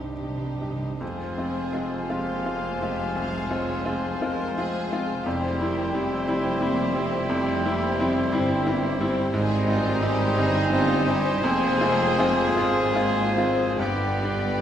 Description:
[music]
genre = classical, romantic movement for piano and orchestra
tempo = 44-60 BPM (dotted quarters)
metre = 12/8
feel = rubato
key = F minor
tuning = A4 = 442 Hz
[part]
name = clear baby grand piano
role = melody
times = 0.0-14.6 s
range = C2 to G4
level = -27 LUFS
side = left 1 dB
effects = none
[part]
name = warm chamber violin section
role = melody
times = 0.0-14.6 s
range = Bb4 to F5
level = -37 LUFS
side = left 8 dB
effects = none
[part]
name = warm symphonic violin section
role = second line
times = 0.0-14.6 s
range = F4 to Bb4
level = -36 LUFS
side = equal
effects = none
[part]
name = dark symphonic viola section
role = accompaniment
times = 0.0-14.6 s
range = Ab3 to Eb4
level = -33 LUFS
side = right 1 dB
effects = none
[part]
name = mellow French horn section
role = sustained chords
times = 0.0-14.6 s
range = D3 to D4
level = -34 LUFS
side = left 3 dB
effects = none
[part]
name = warm chamber cello section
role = bass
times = 0.0-14.6 s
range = F2 to C3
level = -34 LUFS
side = right 2 dB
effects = none
[part]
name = warm chamber double bass section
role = bass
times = 0.0-14.6 s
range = F1 to C2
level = -34 LUFS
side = right 2 dB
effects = none
[part]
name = timpani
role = percussion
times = 0.0-1.0, 13.8-14.6 s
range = G2 to C3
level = -35 LUFS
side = equal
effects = none
[part]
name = dark clarinet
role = second line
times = 1.0-14.6 s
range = Eb4 to G4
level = -37 LUFS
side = equal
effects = none
[part]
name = flute section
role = second line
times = 1.0-14.6 s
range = G5 to Ab5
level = -35 LUFS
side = left 4 dB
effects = none
[part]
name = warm cor anglais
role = second line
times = 1.0-14.6 s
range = B4 to C5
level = -34 LUFS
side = right 2 dB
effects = none
[part]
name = warm bassoon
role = accompaniment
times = 1.0-14.6 s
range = D3 to G3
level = -34 LUFS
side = right 2 dB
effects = none
[part]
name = clear trumpet section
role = stabs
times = 1.0-14.6 s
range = Eb4 to Ab4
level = -32 LUFS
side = right 1 dB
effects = none
[part]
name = mellow tuba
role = bass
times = 1.0-14.6 s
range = F1 to Ab1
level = -34 LUFS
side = right 3 dB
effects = none
[sound]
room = wet concert hall reverb, RT60 1.9 s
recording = none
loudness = -22 LUFS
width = side -10 dB against mid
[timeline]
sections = 0.0-1.0 A section; 1.0-14.6 B section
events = timpani fill 0.0-1.0, 13.8-14.6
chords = 0.0 Cm; 1.0 Fm; 5.3 C/F; 9.3 Abmaj7; 11.4 Fm; 13.8 G

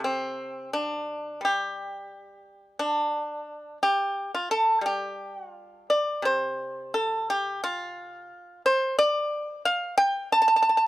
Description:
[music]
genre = chinese traditional, Chinese solo plucked strings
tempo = 87 BPM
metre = 2/4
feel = uneven beats, rubato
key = G shang mode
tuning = A4 = 444 Hz
[part]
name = pipa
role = solo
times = 0.0-10.8 s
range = C3 to A5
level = -24 LUFS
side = equal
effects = none
[sound]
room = little or no reverb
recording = dry, close 1970s-style studio recording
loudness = -24 LUFS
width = side -16 dB against mid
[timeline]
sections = 0.0-6.2 A section; 6.2-10.9 B section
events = none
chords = none

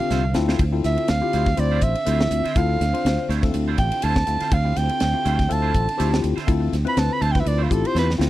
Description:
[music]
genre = electric jazz fusion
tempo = 122 BPM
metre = 4/4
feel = swing 55% on 16ths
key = D dorian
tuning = A4 = 440 Hz
[part]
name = breathy soprano saxophone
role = melody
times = 0.0-8.1 s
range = F4 to B5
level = -25 LUFS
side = right 3 dB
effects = none
[part]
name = bright tine electric piano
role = accompaniment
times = 0.0-8.3 s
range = C4 to C5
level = -27 LUFS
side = left 8 dB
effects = phaser
[part]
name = brassy analog pad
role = sustained chords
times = 0.0-8.3 s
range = D3 to C4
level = -33 LUFS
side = right 1 dB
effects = none
[part]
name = twangy electric guitar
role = stabs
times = 0.1-8.2 s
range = A3 to C5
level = -33 LUFS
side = right 10 dB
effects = ensemble chorus
[part]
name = modern bright fingered electric bass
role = bass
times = 0.1-8.3 s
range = A1 to E2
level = -22 LUFS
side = equal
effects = none
[part]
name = crisp fusion drum kit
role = drums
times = 0.1-8.3 s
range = hi-hat, kick drum, ride cymbal, snare drum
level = -25 LUFS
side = equal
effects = none
[sound]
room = little or no reverb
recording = dry, close 1970s-style studio recording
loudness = -18 LUFS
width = side -15 dB against mid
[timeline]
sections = 0.0-8.3 A section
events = soprano saxophone solo 0.0-8.3; drum fill 0.1-0.6, 8.0-8.3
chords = 0.0 Dm9

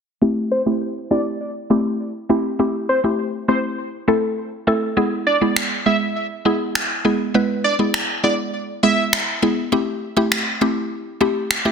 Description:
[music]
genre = dance-pop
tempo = 101 BPM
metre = 4/4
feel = straight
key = A minor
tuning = A4 = 440 Hz
[part]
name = mallet-like synth pluck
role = accompaniment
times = 0.2-11.7 s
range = G#3 to B4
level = -19 LUFS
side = equal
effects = chorus, phaser, low-pass filter
[part]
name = plucky unison lead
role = melody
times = 0.5-9.0 s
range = C5 to E5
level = -22 LUFS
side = equal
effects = low-pass filter, tape echo
[part]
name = electronic finger snaps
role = drums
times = 5.6-11.6 s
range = none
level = -21 LUFS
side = equal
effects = soft clipping on snare
[sound]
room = moderate plate reverb, RT60 1.4 s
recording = dense, heavily limited modern master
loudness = -18 LUFS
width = side -6 dB against mid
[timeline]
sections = 0.2-9.7 A section; 9.7-11.7 B section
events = filter sweep 0.2-9.7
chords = 0.2 Am7; 5.0 E; 9.7 Am7

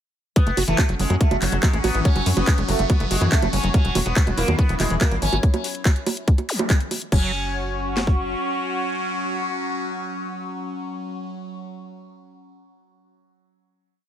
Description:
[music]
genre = psychedelic trance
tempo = 142 BPM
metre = 4/4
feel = straight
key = unclear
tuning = A4 = 441 Hz
[part]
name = sitar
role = melody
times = 0.4-11.6 s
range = F#3 to C#4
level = -28 LUFS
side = right 1 dB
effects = phaser, sidechain pumping, ping-pong delay
[part]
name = evolving wavetable pad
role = sustained chords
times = 1.0-11.3 s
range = F#3 to C#4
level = -31 LUFS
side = equal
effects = phaser, built-in reverb, sidechain pumping
[part]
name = screaming distorted acid line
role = riff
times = 0.4-7.3 s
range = D#3 to F#4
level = -28 LUFS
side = moving between left 7 dB and right 2 dB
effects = distortion, chorus, auto-pan, sidechain pumping, ping-pong delay
[part]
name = drum and bass drum kit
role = drums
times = 0.4-8.2 s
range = kick drum, snare drum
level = -18 LUFS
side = equal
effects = overdrive
[part]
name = drum and bass drum kit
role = drums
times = 0.4-7.2 s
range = bongos, crash cymbal, handclaps, hi-hat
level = -26 LUFS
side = right 2 dB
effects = overdrive
[part]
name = airy breathy pad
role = texture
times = 0.4-11.3 s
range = B3 to C#6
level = -30 LUFS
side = left 1 dB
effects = chorus, sidechain pumping
[part]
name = tight sequencer bass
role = bass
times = 0.5-8.3 s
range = E1 to F#2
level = -24 LUFS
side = equal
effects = none
[part]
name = zap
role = sound effects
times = 6.5-6.6 s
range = none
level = -29 LUFS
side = left 1 dB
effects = none
[sound]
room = digital ambience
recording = none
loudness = -19 LUFS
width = side -10 dB against mid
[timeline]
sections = 0.4-7.1 drop; 7.1-10.5 final chord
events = drop 0.4-7.1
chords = 0.4 F#5; 3.7 E5; 7.1 F#5

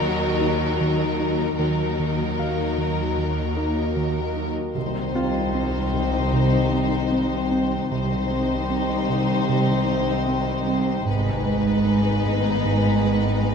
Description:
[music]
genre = cinematic, suspense film score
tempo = 76 BPM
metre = 4/4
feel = straight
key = unclear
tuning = A4 = 439 Hz
[part]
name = rich studio violin section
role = melody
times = 0.0-13.5 s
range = Bb4 to C5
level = -30 LUFS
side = left 5 dB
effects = none
[part]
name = warm studio violin section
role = second line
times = 0.0-13.5 s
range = Eb4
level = -31 LUFS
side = left 4 dB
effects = none
[part]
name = warm studio viola section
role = accompaniment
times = 0.0-13.5 s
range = Gb3 to Ab3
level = -31 LUFS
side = left 1 dB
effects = none
[part]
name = glass harmonica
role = sustained chords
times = 0.0-13.5 s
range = Gb4 to Ab5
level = -32 LUFS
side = left 3 dB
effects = none
[part]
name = round analog bass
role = riff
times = 0.0-13.5 s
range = Ab2 to Eb4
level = -27 LUFS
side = right 3 dB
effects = none
[part]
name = warm studio cello section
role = bass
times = 0.0-13.5 s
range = C2 to Ab2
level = -28 LUFS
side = right 2 dB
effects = none
[part]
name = warm studio double bass section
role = bass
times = 0.0-13.5 s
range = Ab1 to Eb2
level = -28 LUFS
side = right 2 dB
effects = none
[part]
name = organ-like drone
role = drone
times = 0.3-13.5 s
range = Ab1 to Eb2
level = -32 LUFS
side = left 2 dB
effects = none
[part]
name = bright concert grand piano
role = texture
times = 0.0-11.1 s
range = Bb3 to F5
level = -36 LUFS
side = left 2 dB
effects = none
[part]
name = mellow French horn section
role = sustained chords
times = 4.8-13.5 s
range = Eb3 to C4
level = -29 LUFS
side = left 7 dB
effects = none
[part]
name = timpani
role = percussion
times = 4.8-5.9 s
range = C3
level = -36 LUFS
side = left 2 dB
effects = none
[sound]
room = moderate scoring stage reverb, RT60 1.8 s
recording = none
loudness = -20 LUFS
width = side -6 dB against mid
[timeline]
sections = 0.0-4.8 A section; 4.8-13.5 B section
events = none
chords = 0.0 Ebm; 4.8 Cm; 11.1 Abm

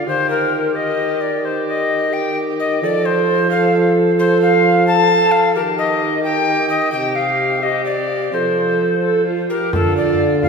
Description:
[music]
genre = classical, renaissance-style consort dance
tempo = 87 BPM (dotted quarters)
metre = 6/8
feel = straight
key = unclear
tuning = A4 = 440 Hz
[part]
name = alto recorder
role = melody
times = 0.0-10.5 s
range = A4 to A5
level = -17 LUFS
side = left 3 dB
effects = none
[part]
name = warm viola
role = second line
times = 0.0-10.5 s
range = F4 to A4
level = -20 LUFS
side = right 3 dB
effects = none
[part]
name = mellow trombone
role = bass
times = 0.0-10.5 s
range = C3 to F3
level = -20 LUFS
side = right 2 dB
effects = none
[part]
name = frame drum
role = percussion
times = 9.7-10.5 s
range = none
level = -21 LUFS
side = left 1 dB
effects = none
[sound]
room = wet church reverb, RT60 3.2 s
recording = recorded in a church or concert hall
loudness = -14 LUFS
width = side -5 dB against mid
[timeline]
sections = 0.0-9.7 A section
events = none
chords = 0.1 Eb; 2.8 F; 5.6 Eb; 6.9 C5; 8.3 F; 9.7 Dm

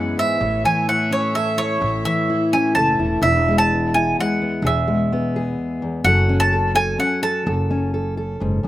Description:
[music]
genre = acoustic folk duo or small band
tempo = 128 BPM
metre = 3/4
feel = straight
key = E major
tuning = A4 = 439 Hz
[part]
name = bowl-back mandolin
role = melody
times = 0.0-7.9 s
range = C#5 to A5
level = -20 LUFS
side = right 1 dB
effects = slapback echo
[part]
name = fingerpicked steel-string acoustic guitar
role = accompaniment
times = 0.0-8.7 s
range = E2 to A4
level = -22 LUFS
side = left 1 dB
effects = none
[part]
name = warm chamber string section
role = sustained chords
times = 0.0-3.2 s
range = E3 to E5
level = -30 LUFS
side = left 1 dB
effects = none
[part]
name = upright bass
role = bass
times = 0.4-8.7 s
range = E1 to A1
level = -22 LUFS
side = equal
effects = none
[sound]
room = little or no reverb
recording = recorded outdoors, with no room sound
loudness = -17 LUFS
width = side -14 dB against mid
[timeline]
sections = 0.0-3.2 A section; 3.2-8.7 B section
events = mandolin solo 0.0-3.2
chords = 0.4 A; 3.2 E; 6.0 F#m

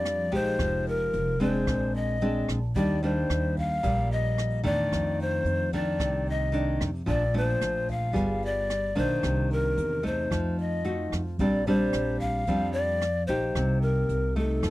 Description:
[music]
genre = bossa nova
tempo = 111 BPM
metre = 4/4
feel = straight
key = Bb major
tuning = A4 = 440 Hz
[part]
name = breathy bright large pan pipes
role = melody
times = 0.0-14.7 s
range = A4 to F5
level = -29 LUFS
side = left 2 dB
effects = none
[part]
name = nylon-string guitar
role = accompaniment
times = 0.0-14.7 s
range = F2 to Ab4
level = -28 LUFS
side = equal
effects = none
[part]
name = upright bass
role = bass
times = 0.0-14.7 s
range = F1 to F2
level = -30 LUFS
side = right 1 dB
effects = none
[part]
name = jazz brush drum kit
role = drums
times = 0.1-14.7 s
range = hi-hat, kick drum, rim click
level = -36 LUFS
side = right 1 dB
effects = none
[sound]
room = light reverb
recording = dry, close 1970s-style studio recording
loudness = -24 LUFS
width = side -17 dB against mid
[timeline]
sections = 0.0-14.7 A section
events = none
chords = 0.0 Bb69; 0.6 Fm9; 1.7 Bb9; 2.8 Ebmaj7; 4.9 F6; 7.1 Bbmaj7; 8.2 G7b9; 9.2 Cm9; 10.3 F7b9; 11.4 Bb69; 13.5 Cm7

